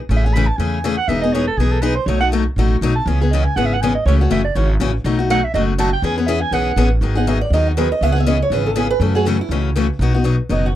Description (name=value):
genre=acoustic string swing (jazz manouche)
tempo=242 BPM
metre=4/4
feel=swing 57% on 8ths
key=E major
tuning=A4 = 440 Hz
part: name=picked steel-string acoustic guitar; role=accompaniment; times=0.1-10.7 s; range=B2 to G#4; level=-20 LUFS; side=left 4 dB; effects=none
part: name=upright bass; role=bass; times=0.1-10.8 s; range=E1 to F#2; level=-18 LUFS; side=equal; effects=none
part: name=mellow soprano saxophone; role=second line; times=0.2-6.9 s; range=G#4 to B5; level=-21 LUFS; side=right 5 dB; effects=none
part: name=picked acoustic archtop guitar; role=melody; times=7.2-10.8 s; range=D#4 to F#5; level=-20 LUFS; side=right 4 dB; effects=none
room=light reverb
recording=dry, close 1970s-style studio recording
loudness=-15 LUFS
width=side -12 dB against mid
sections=0.0-7.0 A section; 7.0-10.8 A section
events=soprano saxophone solo 0.0-7.0; steel-string acoustic guitar solo 7.0-10.8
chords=0.1 Amaj7; 1.1 Emaj7; 2.1 B7; 3.1 C#m7; 4.1 A6; 5.0 B7; 6.0 E69; 7.0 G#m7; 8.0 C#m7; 9.0 F#m7; 10.0 B